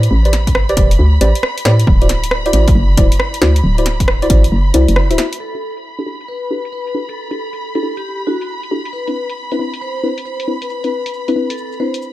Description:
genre	UK garage, two-step garage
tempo	136 BPM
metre	4/4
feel	swing 65% on 16ths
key	E minor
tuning	A4 = 440 Hz
part	warm studio violin section	sustained chords	0.0-12.1 s	B5	-27 LUFS	equal	vintage 12-bit sampler grit, sidechain pumping, low-pass filter
part	hollow knocking FM bass	bass	0.0-5.2 s	D1 to A2	-12 LUFS	equal	sidechain pumping
part	house drum kit	drums	0.0-12.1 s	hi-hat, rim click, shaker, snare drum	-20 LUFS	equal	low-pass filter on hats, low-pass filter on snare, low-pass filter on perc
part	deep mellow chord stab	stabs	0.3-12.1 s	C4 to E5	-20 LUFS	equal	chorus, tape echo
part	electronic kick drum	drums	0.5-4.4 s	none	-13 LUFS	equal	none
part	vibraphone with medium mallets	melody	5.4-12.0 s	F#4 to C5	-24 LUFS	left 2 dB	vintage 12-bit sampler grit, tape echo
room	digital ambience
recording	none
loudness	-13 LUFS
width	side -16 dB against mid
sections	0.0-5.4 A section; 5.4-12.1 B section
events	band accent 5.0; filter sweep on drum 5.4-12.1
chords	0.0 Am11; 1.9 D9; 5.4 Em11; 8.9 Cmaj9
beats	| 0.11 0.55 0.99 1.43 | 1.87 2.31 2.75 3.20 | 3.64 4.08 4.52 4.96 | 5.40 5.84 6.28 6.73 | 7.17 7.61 8.05 8.49 | 8.93 9.37 9.81 10.26 | 10.70 11.14 11.58 12.02

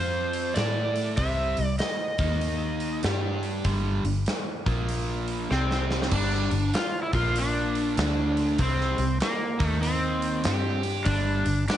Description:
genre	blues rock power trio and southern rock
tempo	97 BPM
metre	4/4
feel	swing 64% on 8ths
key	unclear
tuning	A4 = 440 Hz
part	overdriven slide guitar	melody	0.0-11.8 s	Bb3 to E5	-28 LUFS	equal	slapback echo
part	biting overdriven guitar	riff	0.0-11.6 s	G2 to A4	-30 LUFS	right 1 dB	spring reverb
part	vintage muted fingered electric bass	bass	0.0-11.7 s	G1 to A2	-28 LUFS	equal	none
part	big rock drum kit	drums	0.3-11.8 s	crash cymbal, hi-hat, kick drum, snare drum	-30 LUFS	equal	none
room	light reverb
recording	nothing above 10.5 kHz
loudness	-24 LUFS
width	side -11 dB against mid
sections	0.0-6.1 A section; 6.1-11.8 A section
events	drum fill 5.5-6.1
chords	0.0 F5; 0.6 A5; 1.2 C; 2.1 Eb5; 3.0 G5; 4.6 Bb5; 5.5 C5; 6.1 G5; 7.1 Bb5; 8.0 D5; 8.6 C5; 9.5 Eb5; 10.5 G5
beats	0.56 | 1.18 1.80 2.41 3.03 | 3.65 4.27 4.89 5.50 | 6.12 6.74 7.36 7.98 | 8.60 9.22 9.83 10.45 | 11.07 11.69

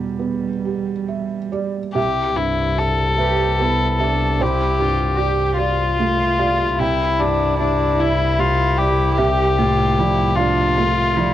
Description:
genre	neoclassical piano and strings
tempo	50 BPM (dotted quarters)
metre	6/8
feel	rubato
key	unclear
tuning	A4 = 440 Hz
part	warm cello	second line	0.0-11.3 s	G3 to G4	-25 LUFS	right 7 dB	cassette tape
part	felt-muted upright piano	accompaniment	0.0-11.3 s	C2 to G5	-23 LUFS	right 5 dB	cassette tape
part	rich violin	melody	1.9-11.3 s	D4 to A4	-19 LUFS	left 4 dB	cassette tape
part	rich double bass	bass	2.0-11.3 s	C2	-22 LUFS	left 1 dB	transformer saturation
room	little or no reverb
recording	home recording on cassette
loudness	-16 LUFS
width	side -12 dB against mid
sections	0.0-2.0 A section; 2.0-11.3 B section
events	none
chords	0.0 Em7; 2.0 Em/C; 4.4 Gsus2/C; 6.8 Cadd9; 9.2 Dmadd9/C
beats	0.66 | 1.97 3.21 | 4.41 5.60 | 6.80 8.01 | 9.19 10.37

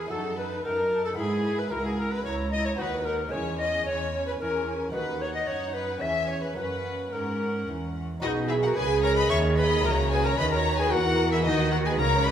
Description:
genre	classical, baroque-style concerto movement with solo episodes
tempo	112 BPM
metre	3/4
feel	straight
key	B major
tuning	A4 = 440 Hz
part	tenor recorder	melody	0.0-12.3 s	D#4 to E5	-30 LUFS	left 1 dB	none
part	warm chamber violin section	melody	0.0-12.3 s	D#5 to C#6	-32 LUFS	left 4 dB	none
part	rich chamber violin section	second line	0.0-12.3 s	F#4 to E5	-32 LUFS	left 2 dB	none
part	lute	accompaniment	0.0-12.3 s	D#2 to G#4	-36 LUFS	right 1 dB	none
part	rich studio viola section	accompaniment	0.0-12.3 s	C#4 to G#4	-32 LUFS	right 2 dB	none
part	rich studio cello section	bass	0.0-12.3 s	C#2 to E3	-32 LUFS	right 3 dB	none
part	warm chamber double bass section	bass	8.2-12.3 s	B1 to E2	-29 LUFS	right 1 dB	none
room	wet recital hall reverb, RT60 1.5 s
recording	heard from further back in the room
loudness	-24 LUFS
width	side -9 dB against mid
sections	0.0-8.2 A section; 8.2-12.3 B section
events	none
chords	0.1 D#dim/F#; 1.2 E/G#; 1.7 F#7/C#; 2.8 B/D#; 3.3 C#m/E; 4.9 B/D#; 6.0 C#m7/E; 6.6 F#; 8.2 B; 9.8 F#5/C#; 11.5 B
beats	| 0.11 0.65 1.18 | 1.72 2.26 2.79 | 3.33 3.87 4.41 | 4.95 5.49 6.03 | 6.58 7.13 7.68 | 8.23 8.77 9.31 | 9.85 10.39 10.92 | 11.46 11.99

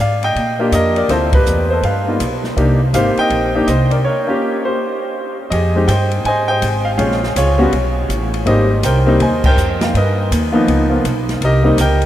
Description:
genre	jazz piano trio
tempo	163 BPM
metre	4/4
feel	swing 64% on 8ths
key	F minor from 5.5 s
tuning	A4 = 440 Hz
part	clear baby grand piano	melody	0.0-12.1 s	F3 to Ab5	-15 LUFS	equal	none
part	upright bass	bass	0.0-12.1 s	Ab1 to Bb2	-17 LUFS	equal	none
part	open jazz drum kit	drums	0.2-12.1 s	crash cymbal, hi-hat, kick drum, ride cymbal, snare drum	-23 LUFS	equal	none
room	wet huge ambient reverb, RT60 8.4 s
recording	in a vast, echoing space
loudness	-13 LUFS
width	side -12 dB against mid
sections	0.0-5.5 A section; 5.5-12.1 B section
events	band accent 1.3, 9.4; break 4.0-5.5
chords	0.0 Gm7; 1.1 Dm9; 1.8 G7; 2.6 Cm7; 4.0 Gm7b5; 4.8 N.C.; 5.5 Fm9; 7.0 Bbm7; 7.7 Aadd9; 8.5 Abmaj9; 9.9 G7alt; 11.4 Cm7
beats	0.35 0.72 | 1.09 1.46 1.83 2.19 | 2.56 2.93 3.30 3.67 | 4.04 4.41 4.78 5.15 | 5.52 5.88 6.25 6.62 | 6.99 7.36 7.73 8.10 | 8.47 8.84 9.20 9.57 | 9.94 10.31 10.68 11.05 | 11.42 11.79

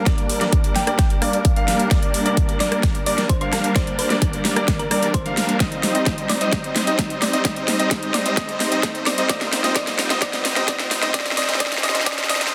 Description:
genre	EDM, festival progressive house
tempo	130 BPM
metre	4/4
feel	straight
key	G minor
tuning	A4 = 440 Hz
part	thumb-piano-like synth pluck	melody	0.0-12.5 s	Bb4 to G5	-32 LUFS	equal	chorus, phaser, delay
part	rich studio string section	sustained chords	0.0-12.5 s	G3 to C5	-33 LUFS	equal	none
part	clear concert grand piano	arpeggios	0.0-12.5 s	D5 to F5	-30 LUFS	equal	sidechain pumping, low-pass filter, delay
part	supersaw chords	riff	0.0-12.5 s	G3 to F5	-26 LUFS	equal	vintage 12-bit sampler grit, sidechain pumping, low-pass filter, delay
part	riser	sound effects	0.9-12.5 s	none	-37 LUFS	equal	none
part	big-room dance drum kit	drums	0.1-12.5 s	hi-hat, rim click, snare drum	-25 LUFS	equal	overdrive
part	electronic kick drum	drums	0.1-12.2 s	none	-23 LUFS	equal	overdrive
room	moderate lush hall reverb, RT60 2.1 s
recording	dense, heavily limited modern master, high-pass filter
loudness	-20 LUFS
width	mono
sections	0.0-12.5 A section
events	build-up 0.0-12.5; drum fill 0.0-12.5; filter sweep on supersaw synth 0.0-12.5; filter sweep 0.0-12.5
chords	0.0 Gm; 5.6 Cm; 9.3 F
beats	| 0.06 0.53 0.99 1.45 | 1.91 2.37 2.83 3.29 | 3.76 4.22 4.68 5.14 | 5.60 6.06 6.53 6.99 | 7.45 7.91 8.37 8.83 | 9.29 9.76 10.22 10.68 | 11.14 11.60 12.06 12.53

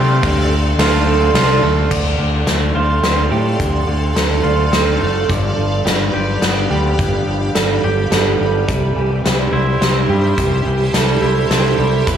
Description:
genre	post-rock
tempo	106 BPM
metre	3/4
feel	straight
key	D dorian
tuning	A4 = 441 Hz
part	granular cloud pad	sustained chords	0.0-12.2 s	G4 to C6	-23 LUFS	right 1 dB	built-in reverb
part	electric guitar through a small old amp	arpeggios	0.0-12.2 s	G4 to D5	-21 LUFS	right 6 dB	digital delay
part	twangy electric guitar	arpeggios	0.0-12.2 s	E2 to G4	-21 LUFS	left 1 dB	digital delay
part	growling fingered electric bass	bass	0.0-12.2 s	E1 to C3	-18 LUFS	equal	overdrive
part	huge arena drum kit	drums	0.2-12.2 s	crash cymbal, hi-hat, kick drum, ride cymbal, snare drum	-19 LUFS	equal	none
room	light reverb, small room ambience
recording	studio reverb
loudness	-13 LUFS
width	side -9 dB against mid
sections	0.0-1.9 A section; 1.9-12.2 B section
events	none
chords	0.0 Dm7; 5.3 G7; 8.7 C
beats	| 0.23 0.79 1.35 | 1.92 2.48 3.04 | 3.60 4.17 4.73 | 5.30 5.86 6.43 | 6.99 7.55 8.12 | 8.68 9.25 9.81 | 10.38 10.94 11.50 | 12.07

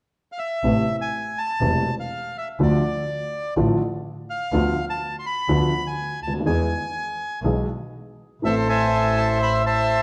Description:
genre	tango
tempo	123 BPM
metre	4/4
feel	rubato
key	A harmonic minor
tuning	A4 = 442 Hz
part	bandoneon	melody	0.3-10.0 s	A4 to C6	-26 LUFS	equal	none
part	warm upright piano	accompaniment	0.6-10.0 s	E1 to A4	-26 LUFS	equal	none
part	clear double bass	bass	0.6-10.0 s	E1 to E2	-28 LUFS	equal	none
room	wet recital hall reverb, RT60 1.5 s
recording	worn, warbling old tape, cassette tape, warbly pitch drift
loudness	-23 LUFS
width	mono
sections	0.6-8.4 A section; 8.4-10.0 B section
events	none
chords	0.0 N.C.; 0.6 Am; 2.6 Dm; 4.5 Bdim/D; 6.5 E; 8.4 Am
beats	0.14 | 0.63 1.13 1.62 2.11 | 2.60 3.08 3.56 4.05 | 4.53 5.01 5.49 5.97 | 6.46 6.95 7.44 7.93 | 8.43 8.92 9.41 9.90

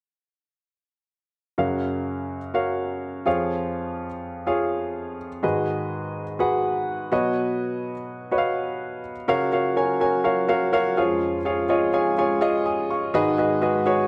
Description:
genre	pop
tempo	125 BPM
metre	4/4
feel	straight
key	F# major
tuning	A4 = 438 Hz
part	clear grand piano	accompaniment	1.6-14.1 s	E#2 to D#6	-24 LUFS	equal	none
part	chorused pulse-width pad	sustained chords	9.3-14.1 s	E#2 to B4	-33 LUFS	equal	none
room	moderate large studio reverb, RT60 1.1 s, studio ambience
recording	none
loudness	-24 LUFS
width	mono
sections	1.6-9.3 A section; 9.3-14.1 B section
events	grand piano fill 12.2-13.1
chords	1.6 F#maj7; 3.3 C#/E#; 5.4 G#m7; 7.1 Badd9; 9.3 F#maj7; 11.0 C#/E#; 13.1 G#m7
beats	| 1.58 2.06 2.54 3.03 | 3.51 3.99 4.47 4.95 | 5.43 5.92 6.40 6.88 | 7.36 7.84 8.32 8.80 | 9.29 9.77 10.25 10.73 | 11.21 11.69 12.17 12.65 | 13.14 13.62

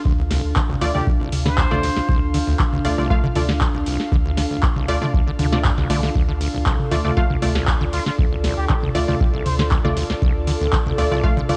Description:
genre	acid house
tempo	118 BPM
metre	4/4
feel	straight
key	D minor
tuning	A4 = 438 Hz
part	warbly tape-like pad	sustained chords	0.0-11.6 s	D4 to A4	-32 LUFS	equal	chorus, built-in reverb, sidechain pumping
part	airy breathy pad	texture	0.0-11.6 s	D4 to F5	-33 LUFS	equal	chorus, sidechain pumping
part	acid bass, saw	riff	0.1-11.6 s	C2 to D3	-27 LUFS	equal	sidechain pumping
part	warm sub bass	bass	0.1-11.6 s	C2 to D2	-27 LUFS	equal	sidechain pumping
part	electronic kick drum	drums	0.1-11.3 s	none	-23 LUFS	equal	cassette tape
part	booming analog drum machine	drums	0.3-11.6 s	handclaps, hi-hat, snare drum, toms	-28 LUFS	equal	cassette tape
part	filtered dub chord stab	stabs	0.8-11.6 s	A3 to F5	-27 LUFS	equal	chorus, analog delay
part	trumpet with plunger mute	melody	0.9-2.2, 7.9-9.7 s	F4 to C5	-32 LUFS	equal	cassette tape, analog delay
room	digital ambience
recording	home recording on cassette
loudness	-20 LUFS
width	mono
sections	0.0-11.6 A section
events	none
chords	0.0 Dm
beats	| 0.05 0.56 1.07 1.58 | 2.09 2.59 3.10 3.61 | 4.12 4.63 5.14 5.64 | 6.15 6.66 7.17 7.68 | 8.19 8.70 9.20 9.71 | 10.22 10.73 11.24

